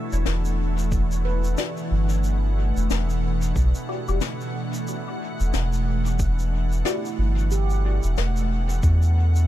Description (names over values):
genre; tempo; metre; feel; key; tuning
ambient dub; 91 BPM; 4/4; swing 59% on 16ths; E minor; A4 = 440 Hz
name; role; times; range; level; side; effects
soft additive organ-like pad; sustained chords; 0.0-9.5 s; B2 to F#5; -28 LUFS; equal; ensemble chorus, built-in reverb
handpan; arpeggios; 0.0-9.2 s; E4 to B4; -36 LUFS; right 7 dB; dub echo
soft dub sub bass; bass; 0.1-9.5 s; E1 to E2; -21 LUFS; equal; none
shaker and snare drum; drums; 0.1-9.5 s; none; -33 LUFS; left 5 dB; dub echo
electronic kick drum; drums; 0.9-9.0 s; none; -25 LUFS; equal; none
filtered dub chord stab; stabs; 1.6-7.0 s; F#4 to D5; -35 LUFS; left 5 dB; phaser, analog chorus, dub echo
room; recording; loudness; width
small room ambience; none; -21 LUFS; side -14 dB against mid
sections
0.0-9.5 A section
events
none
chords
0.0 Em7